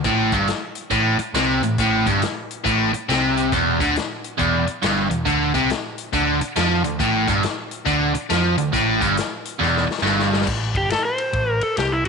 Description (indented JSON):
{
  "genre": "blues rock power trio and southern rock",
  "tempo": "138 BPM",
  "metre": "4/4",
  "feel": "swing 64% on 8ths",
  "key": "unclear",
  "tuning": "A4 = 441 Hz",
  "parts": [
    { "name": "biting overdriven guitar", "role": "riff", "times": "0.0-10.5 s", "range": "E2 to F3", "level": "-19 LUFS", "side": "equal", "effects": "none" },
    { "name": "overdriven picked electric bass", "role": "bass", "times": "0.0-12.1 s", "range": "E1 to F2", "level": "-25 LUFS", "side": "right 1 dB", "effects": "none" },
    { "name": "vintage drum kit", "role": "drums", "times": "0.0-12.1 s", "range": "crash cymbal, hi-hat, kick drum, ride cymbal, snare drum", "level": "-28 LUFS", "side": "left 4 dB", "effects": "none" },
    { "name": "overdriven slide guitar", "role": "melody", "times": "10.8-12.1 s", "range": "E4 to C5", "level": "-20 LUFS", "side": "left 1 dB", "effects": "none" }
  ],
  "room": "light reverb, small room ambience",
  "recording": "1960s-style stereo, nothing above 11.0 kHz",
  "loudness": "-18 LUFS",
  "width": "side -5 dB against mid",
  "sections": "0.0-10.5 A section; 10.5-12.1 B section",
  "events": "drum fill 9.6-10.5; electric slide guitar solo 10.5-12.1",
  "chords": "0.1 Gsus24; 3.5 Em7; 5.3 Csus24; 7.0 Gsus2; 7.9 Dm; 8.7 Gsus2; 9.6 Em; 10.5 Gsus4 (rootless)"
}